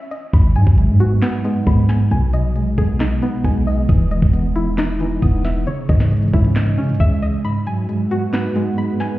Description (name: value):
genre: hip hop, trap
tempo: 135 BPM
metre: 4/4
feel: half-time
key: G# minor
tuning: A4 = 440 Hz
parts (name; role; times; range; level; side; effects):
- string-like resonator pluck; arpeggios; 0.0-9.2 s; E3 to D#6; -26 LUFS; left 1 dB; chorus, low-pass filter, digital delay
- trap drum kit; drums; 0.1-9.1 s; handclaps, hi-hat, kick drum, snare drum; -17 LUFS; equal; none
- mellow tine electric piano; accompaniment; 0.3-9.2 s; G#2 to D#5; -20 LUFS; right 1 dB; medium stereo tremolo, low-pass filter
- hard-hitting 808-style bass; bass; 0.3-7.2 s; E1 to C#3; -17 LUFS; equal; none
- dark analog pad; sustained chords; 7.8-9.2 s; G#3 to B4; -26 LUFS; right 3 dB; chorus
room: little or no reverb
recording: heard muffled through a wall, stone room reverb, EQ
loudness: -15 LUFS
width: side -16 dB against mid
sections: 0.0-9.2 A section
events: break 0.0-0.3, 7.4-9.2; filter sweep 0.0-7.4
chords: 0.3 G#m7; 2.1 B6; 3.9 Emaj7; 5.7 C#madd9; 7.4 G#m7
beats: | 0.34 0.78 1.22 1.67 | 2.11 2.56 3.00 3.45 | 3.89 4.33 4.78 5.22 | 5.67 6.11 6.56 7.00 | 7.45 7.89 8.34 8.78